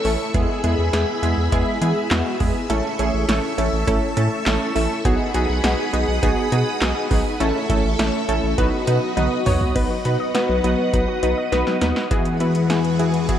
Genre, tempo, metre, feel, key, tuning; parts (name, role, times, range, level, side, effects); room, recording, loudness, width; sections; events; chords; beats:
synth-pop; 102 BPM; 4/4; straight; A4 = 442 Hz
funky polysynth comp; accompaniment; 0.0-13.4 s; G#3 to C#5; -22 LUFS; right 1 dB; chorus
string machine, full ensemble; sustained chords; 0.0-13.4 s; E2 to E6; -24 LUFS; left 2 dB; phaser, ensemble chorus
round analog bass; bass; 0.0-11.9 s; A1 to E3; -22 LUFS; equal
electro analog drum machine; drums; 0.0-13.4 s; crash cymbal, handclaps, hi-hat, kick drum, snare drum, toms; -24 LUFS; equal
soft round pluck; arpeggios; 9.8-12.0 s; F#3 to D#5; -28 LUFS; left 1 dB; chorus, tape echo
moderate plate reverb, RT60 3.6 s; dreamy mix soaked in reverb; -18 LUFS; side -10 dB against mid
0.0-9.8 A section; 9.8-12.1 B section; 12.1-13.4 C section
drum fill 9.2-9.8, 11.5-12.1
0.3 E; 2.7 A; 5.0 B6; 7.4 A; 8.6 B; 12.1 Eadd9
| 0.34 0.93 1.52 2.11 | 2.70 3.29 3.87 4.46 | 5.05 5.64 6.23 6.82 | 7.40 7.99 8.58 9.17 | 9.76 10.35 10.93 11.52 | 12.11 12.70 13.29